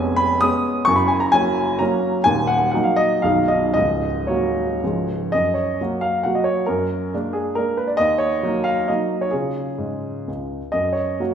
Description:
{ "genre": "classical, romantic triple-time dance for piano with dotted rhythms", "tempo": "108-147 BPM", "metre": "3/4", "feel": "rubato", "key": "F# major", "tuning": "A4 = 440 Hz", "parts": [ { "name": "warm baby grand piano", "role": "solo", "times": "0.0-11.3 s", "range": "B0 to D#6", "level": "-18 LUFS", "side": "equal", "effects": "none" } ], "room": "wet recital hall reverb, RT60 1.5 s", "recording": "recorded in a church or concert hall", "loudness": "-18 LUFS", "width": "side -8 dB against mid", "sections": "0.0-5.3 A section; 5.3-11.3 B section", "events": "none", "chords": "0.0 C#7/E#; 0.9 F#; 2.2 D#m; 3.2 G#m7/B; 3.7 F#/C#; 4.8 C#; 5.3 F#; 6.7 A#7/F#; 8.0 D#m7; 9.3 C#; 10.7 F#", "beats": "0.41 | 0.87 1.34 1.80 | 2.25 2.71 3.22 | 3.74 4.28 4.82 | 5.33 5.79 6.26 | 6.68 7.12 7.57 | 7.99 8.43 8.88 | 9.32 9.79 10.28 | 10.73 11.20" }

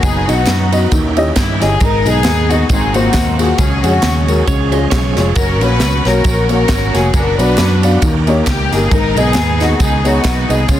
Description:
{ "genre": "uptempo gospel", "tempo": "135 BPM", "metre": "4/4", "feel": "swing 56% on 8ths", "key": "unclear", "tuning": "A4 = 441 Hz", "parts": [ { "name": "warm studio string section", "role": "melody", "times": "0.0-10.8 s", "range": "G#3 to B4", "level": "-18 LUFS", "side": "left 2 dB", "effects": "tape echo" }, { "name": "bright tonewheel organ", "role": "sustained chords", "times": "0.0-10.8 s", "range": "D#3 to C#5", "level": "-25 LUFS", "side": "right 4 dB", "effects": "slow rotary speaker, chorus vibrato" }, { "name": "fingered electric bass", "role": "bass", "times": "0.0-10.8 s", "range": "E#1 to G2", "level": "-16 LUFS", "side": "equal", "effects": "none" }, { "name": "crisp fusion drum kit", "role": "drums", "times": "0.0-10.8 s", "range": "kick drum, ride cymbal, snare drum", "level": "-17 LUFS", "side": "equal", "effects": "none" }, { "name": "tambourine and handclaps", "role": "percussion", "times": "0.0-10.8 s", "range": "none", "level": "-28 LUFS", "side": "equal", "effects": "none" }, { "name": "dark baby grand piano", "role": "accompaniment", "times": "0.3-10.8 s", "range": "G#2 to E#5", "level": "-17 LUFS", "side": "left 2 dB", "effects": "none" }, { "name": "clean electric guitar", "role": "second line", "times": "4.5-5.3 s", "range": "C#5 to D#5", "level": "-24 LUFS", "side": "right 10 dB", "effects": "spring reverb" } ], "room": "light reverb, studio reverb", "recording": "dense, heavily limited modern master", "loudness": "-11 LUFS", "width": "side -12 dB against mid", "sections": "0.0-10.8 A section", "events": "none", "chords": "0.0 B/F#; 0.9 D#7b9; 1.8 G#m; 2.7 G#13; 3.6 C#sus4; 4.5 C#; 5.4 F#; 7.1 Bm/F#; 8.0 D#7; 8.9 G#m", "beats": "| 0.04 0.48 0.92 1.37 | 1.81 2.26 2.70 3.15 | 3.59 4.04 4.48 4.92 | 5.37 5.81 6.26 6.70 | 7.14 7.59 8.03 8.47 | 8.92 9.36 9.80 10.24 | 10.69" }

